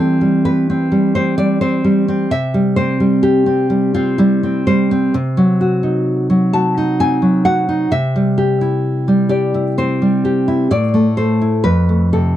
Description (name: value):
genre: romantic piece for solo classical guitar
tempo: 64 BPM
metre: 3/4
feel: rubato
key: C major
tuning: A4 = 440 Hz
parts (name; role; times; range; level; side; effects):
- nylon-string guitar; solo; 0.0-12.4 s; F2 to A5; -13 LUFS; equal; none
room: light reverb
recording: dry, close 1970s-style studio recording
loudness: -13 LUFS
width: side -12 dB against mid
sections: 0.0-12.4 A section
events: none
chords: 0.0 C/E; 2.3 C5; 5.1 Cdim; 7.9 C; 10.7 Am; 11.6 F